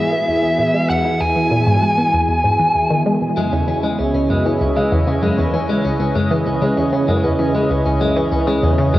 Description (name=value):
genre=ambient, sequencer-driven space music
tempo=97 BPM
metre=4/4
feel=straight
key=C# minor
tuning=A4 = 440 Hz
part: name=fuzz lead guitar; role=melody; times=0.0-3.0 s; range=E5 to G#5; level=-19 LUFS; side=equal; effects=distortion, cassette tape, analog delay
part: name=sweeping resonant pad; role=sustained chords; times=0.0-9.0 s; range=C#3 to D#5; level=-19 LUFS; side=right 1 dB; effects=chorus, cassette tape
part: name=analog pluck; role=riff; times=0.0-9.0 s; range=C#2 to B3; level=-19 LUFS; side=equal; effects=chorus, phaser, cassette tape, analog delay
part: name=electric guitar at the edge of break-up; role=arpeggios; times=3.4-9.0 s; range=G#3 to C#4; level=-21 LUFS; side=left 1 dB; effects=auto-pan, cassette tape, analog delay
room=wet spring reverb, RT60 2.2 s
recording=home recording on cassette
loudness=-14 LUFS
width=side -15 dB against mid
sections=0.0-9.0 A section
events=filter sweep on synth arpeggio sound 0.0-9.0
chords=0.0 Eadd9; 3.4 C#m7